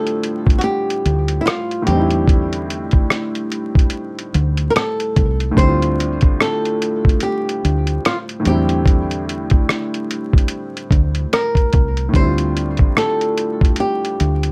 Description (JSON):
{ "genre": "lo-fi hip hop", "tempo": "73 BPM", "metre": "4/4", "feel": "swing 59% on 16ths", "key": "D minor", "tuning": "A4 = 440 Hz", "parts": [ { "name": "flamenco guitar", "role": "melody", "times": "0.0-14.5 s", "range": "E4 to C5", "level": "-23 LUFS", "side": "equal", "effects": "none" }, { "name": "warm upright piano", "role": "accompaniment", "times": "0.0-14.5 s", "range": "A2 to F4", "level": "-25 LUFS", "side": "equal", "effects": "none" }, { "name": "lo-fi sampler-style drum kit", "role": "drums", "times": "0.1-14.5 s", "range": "hi-hat, kick drum, rim click", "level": "-18 LUFS", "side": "equal", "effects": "none" }, { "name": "deep dub fingered electric bass", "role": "bass", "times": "1.1-14.5 s", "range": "C2 to E2", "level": "-21 LUFS", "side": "equal", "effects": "none" } ], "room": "light reverb", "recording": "vinyl crackle", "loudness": "-17 LUFS", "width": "mono", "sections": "0.0-14.5 A section", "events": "none", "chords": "0.0 Dm7; 1.9 C69; 5.6 Dm7; 8.4 Em7b5; 12.1 Dm7" }